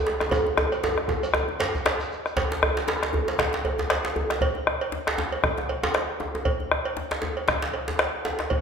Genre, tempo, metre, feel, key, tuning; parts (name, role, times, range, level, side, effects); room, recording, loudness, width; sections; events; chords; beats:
west african traditional, West African drum ensemble; 117 BPM; 4/4; swing 57% on 16ths
djembe; percussion; 0.1-8.5 s; -26 LUFS; right 1 dB
bombo; percussion; 0.2-8.6 s; -27 LUFS; left 2 dB
djembe; percussion; 0.2-8.6 s; -35 LUFS; left 4 dB
shekere; percussion; 0.2-2.3 s; -42 LUFS; right 1 dB
cowbell; percussion; 0.3-8.6 s; -32 LUFS; right 4 dB
wet recital hall reverb, RT60 1.6 s; minimal, uncompressed stereo recording; -23 LUFS; side -6 dB against mid
0.0-2.4 A section; 2.4-8.6 B section
drum fill 0.3-2.4
| 0.32 0.83 1.34 1.85 | 2.37 2.88 3.39 3.90 | 4.41 4.93 5.44 5.95 | 6.46 6.97 7.48 7.99 | 8.50